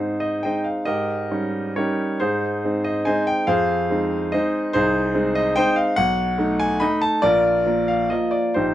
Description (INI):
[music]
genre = classical, romantic triple-time dance for piano with dotted rhythms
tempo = 120-155 BPM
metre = 3/4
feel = rubato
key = Ab major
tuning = A4 = 440 Hz
[part]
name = clear concert grand piano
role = solo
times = 0.0-8.7 s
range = Bb1 to B5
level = -19 LUFS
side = equal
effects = none
[sound]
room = light reverb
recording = none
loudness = -19 LUFS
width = side -13 dB against mid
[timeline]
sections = 0.0-8.7 A section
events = none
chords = 0.0 Ab; 0.9 Eb7/Ab; 2.2 Ab; 3.5 Fm7; 4.7 Ab/C; 6.0 B7; 7.2 Bb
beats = 0.45 | 0.87 1.31 1.77 | 2.20 2.63 3.07 | 3.49 3.91 4.33 | 4.74 5.15 5.57 | 5.96 6.38 6.82 | 7.23 7.65 8.10 | 8.56